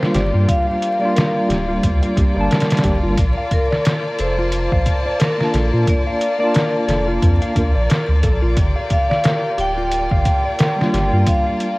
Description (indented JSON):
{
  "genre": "trip hop",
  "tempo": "89 BPM",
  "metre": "4/4",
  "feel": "swing 58% on 16ths",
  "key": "G minor",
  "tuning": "A4 = 436 Hz",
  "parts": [
    { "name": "vibraphone with medium hard mallets", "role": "melody", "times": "0.0-11.8 s", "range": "Bb4 to G5", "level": "-23 LUFS", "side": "equal", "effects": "dub echo" },
    { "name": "tine electric piano", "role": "accompaniment", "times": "0.0-11.8 s", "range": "G3 to A5", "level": "-21 LUFS", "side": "equal", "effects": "medium tremolo" },
    { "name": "warm studio violin section", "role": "sustained chords", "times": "0.0-11.8 s", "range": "Bb3 to A5", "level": "-26 LUFS", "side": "left 2 dB", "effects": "none" },
    { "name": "mellow electric guitar", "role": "arpeggios", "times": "0.0-11.8 s", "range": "F4 to F5", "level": "-25 LUFS", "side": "left 1 dB", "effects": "tape echo" },
    { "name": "trip hop sampler-style drum kit", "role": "drums", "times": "0.0-11.8 s", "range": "hi-hat, kick drum, snare drum", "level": "-18 LUFS", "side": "equal", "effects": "none" },
    { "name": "warm sub bass", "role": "bass", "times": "0.1-11.2 s", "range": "D1 to Bb2", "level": "-18 LUFS", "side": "equal", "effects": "none" }
  ],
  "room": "digital ambience",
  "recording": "worn, warbling old tape, cassette tape, vinyl crackle, warbly pitch drift",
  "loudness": "-15 LUFS",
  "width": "side -23 dB against mid",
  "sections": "0.0-11.8 A section",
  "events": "none",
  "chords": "0.0 Gm7; 3.2 Bbmaj7; 8.6 Gm7"
}